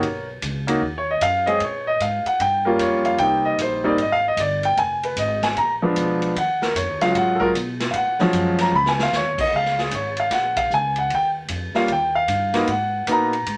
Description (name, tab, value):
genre	jazz, small-group swing and bop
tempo	152 BPM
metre	4/4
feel	swing 65% on 8ths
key	Eb minor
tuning	A4 = 441 Hz
part	clear grand piano	accompaniment	0.0-13.6 s	F3 to Cb6	-21 LUFS	equal	none
part	upright bass	bass	0.0-13.6 s	F1 to Cb3	-33 LUFS	equal	none
part	swinging big-band drum kit	drums	0.0-13.6 s	crash cymbal, hi-hat, kick drum, ride cymbal, snare drum	-32 LUFS	equal	none
room	moderate studio reverb, RT60 0.6 s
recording	none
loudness	-21 LUFS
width	mono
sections	0.0-9.5 A section; 9.5-13.6 A section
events	drum fill 8.7-9.1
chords	0.0 Bmaj9; 1.6 Ab13sus4; 2.4 Bbm6; 3.2 Abmaj9; 4.8 Fm7b5; 5.6 Bb7b9; 6.4 Ebm11; 8.7 Dbsus2; 9.5 G#13sus4; 11.1 D#; 12.7 G#m9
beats	| 0.03 0.42 0.82 1.21 | 1.61 2.00 2.40 2.79 | 3.19 3.58 3.98 4.37 | 4.77 5.17 5.56 5.96 | 6.35 6.75 7.14 7.54 | 7.93 8.33 8.72 9.12 | 9.51 9.91 10.30 10.70 | 11.10 11.49 11.89 12.28 | 12.68 13.07 13.47